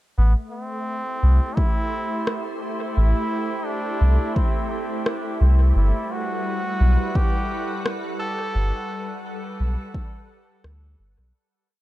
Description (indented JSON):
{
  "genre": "ambient dub",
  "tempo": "86 BPM",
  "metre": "4/4",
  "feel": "swing 54% on 16ths",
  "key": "A dorian",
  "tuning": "A4 = 438 Hz",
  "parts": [
    { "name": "trombone with straight mute", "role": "melody", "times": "0.2-9.6 s", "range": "B3 to A4", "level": "-29 LUFS", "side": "equal", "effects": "dub echo" },
    { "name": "soft additive organ-like pad", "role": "sustained chords", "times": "0.3-11.3 s", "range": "G3 to F#5", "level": "-29 LUFS", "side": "equal", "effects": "ensemble chorus, built-in reverb" },
    { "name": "soft dub sub bass", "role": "bass", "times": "0.2-11.3 s", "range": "G1 to D2", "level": "-16 LUFS", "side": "equal", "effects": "none" },
    { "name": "electronic kick drum", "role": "drums", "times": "1.6-10.1 s", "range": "none", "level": "-22 LUFS", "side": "equal", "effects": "small room ambience" },
    { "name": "electronic rim click", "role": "drums", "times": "2.3-10.8 s", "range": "none", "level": "-27 LUFS", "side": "equal", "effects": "overdrive, small room ambience, dub echo" }
  ],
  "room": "little or no reverb",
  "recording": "dark, warm production",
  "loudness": "-20 LUFS",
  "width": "side -15 dB against mid",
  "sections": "0.2-11.3 groove",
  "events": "fade-out 7.6-11.3",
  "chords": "0.2 Am7; 5.8 Gmaj9"
}